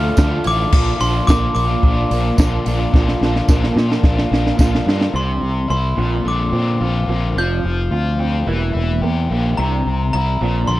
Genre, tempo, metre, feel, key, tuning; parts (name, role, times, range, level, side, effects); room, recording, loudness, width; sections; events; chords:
indie rock; 108 BPM; 4/4; straight; A4 = 440 Hz
glockenspiel with brass mallets; melody; 0.0-10.8 s; Bb5 to G6; -24 LUFS; equal; tape echo
biting overdriven guitar; riff; 0.0-10.8 s; Bb2 to G4; -23 LUFS; left 5 dB; harmonic tremolo
electric guitar through a small old amp; riff; 0.0-10.8 s; E3 to F4; -25 LUFS; right 6 dB; ensemble chorus
growling fingered electric bass; bass; 0.0-10.8 s; E1 to Bb2; -19 LUFS; equal; overdrive
compact cocktail drum kit; drums; 0.2-5.1 s; crash cymbal, hi-hat, kick drum, snare drum; -16 LUFS; equal
tambourine; percussion; 0.2-4.7 s; -33 LUFS; right 4 dB
little or no reverb; dry, close 1970s-style studio recording; -15 LUFS; side -16 dB against mid
0.0-5.1 A section; 5.1-10.8 B section
drum fill 2.9-5.1
0.0 Dmadd9; 0.7 Bb; 5.1 Cadd9; 6.0 Bbadd9; 7.4 Fsus2; 8.5 Edim; 9.6 Cadd9